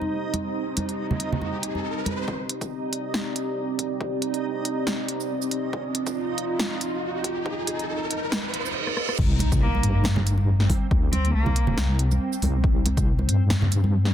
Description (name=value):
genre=deep dubstep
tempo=139 BPM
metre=4/4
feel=swing 55% on 16ths, half-time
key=C minor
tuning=A4 = 440 Hz
part: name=dark analog pad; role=sustained chords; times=0.0-8.7 s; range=C4 to D5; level=-30 LUFS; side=right 1 dB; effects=chorus
part: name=congas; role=percussion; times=0.0-2.2, 9.4-13.9 s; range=none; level=-30 LUFS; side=right 2 dB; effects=dub echo
part: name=riser, reverse cymbal and impact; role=sound effects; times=0.5-10.9 s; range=none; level=-32 LUFS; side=equal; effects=none
part: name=backwards swelling texture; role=texture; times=0.0-14.1 s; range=C4 to Eb4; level=-32 LUFS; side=right 1 dB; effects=built-in reverb
part: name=deep house drum kit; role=drums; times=0.3-14.1 s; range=crash cymbal, hi-hat, rim click, shaker, snare drum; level=-28 LUFS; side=equal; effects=none
part: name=electronic kick drum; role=drums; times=2.3-13.1 s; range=none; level=-24 LUFS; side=left 1 dB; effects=high-pass filter on kick, high-pass filter on room
part: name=deep soft wobble bass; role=bass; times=9.2-14.1 s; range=C2 to G2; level=-21 LUFS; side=left 1 dB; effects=chorus
part: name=rich cello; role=melody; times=9.6-11.8 s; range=Bb3 to C4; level=-32 LUFS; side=equal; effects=vintage 12-bit sampler grit, dub echo
room=light reverb, digital ambience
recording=dense, heavily limited modern master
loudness=-22 LUFS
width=side -10 dB against mid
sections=0.0-2.3 A section; 2.3-9.2 B section; 9.2-14.1 C section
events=filter sweep on analog synth pad 0.0-2.3; riser 0.5-2.3, 2.3-8.8; build-up 2.3-9.2; reverse cymbal 8.3-9.2; drum fill 8.9-9.2; drop 9.2-14.1; impact 9.2-10.9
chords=0.0 Cm; 9.2 C5